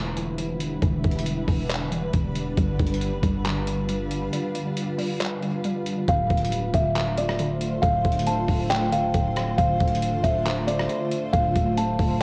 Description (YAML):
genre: hip hop, atmospheric cloud-rap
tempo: 137 BPM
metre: 4/4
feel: half-time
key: D dorian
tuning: A4 = 440 Hz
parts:
  - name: granular cloud pad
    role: sustained chords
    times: 0.0-12.2 s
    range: D3 to C5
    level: -31 LUFS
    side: equal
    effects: built-in reverb
  - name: hollow square pluck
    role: arpeggios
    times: 0.0-12.2 s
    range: D3 to G3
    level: -36 LUFS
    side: equal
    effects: none
  - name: warm 808-style bass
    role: bass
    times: 0.0-12.2 s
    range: C1 to G1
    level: -30 LUFS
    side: equal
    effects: none
  - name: trip hop sampler-style drum kit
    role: drums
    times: 0.2-12.1 s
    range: handclaps, hi-hat, kick drum, rim click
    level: -30 LUFS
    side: equal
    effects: overdrive, cassette tape
  - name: buzzing kalimba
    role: melody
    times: 6.1-12.2 s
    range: D5 to A5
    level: -28 LUFS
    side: equal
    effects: low-pass filter, cassette tape, analog delay
room: light reverb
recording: home recording on cassette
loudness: -24 LUFS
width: mono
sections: 0.0-6.1 A section; 6.1-12.2 B section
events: break 4.3-6.1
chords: 0.0 Em7; 2.6 G7; 6.1 Dm7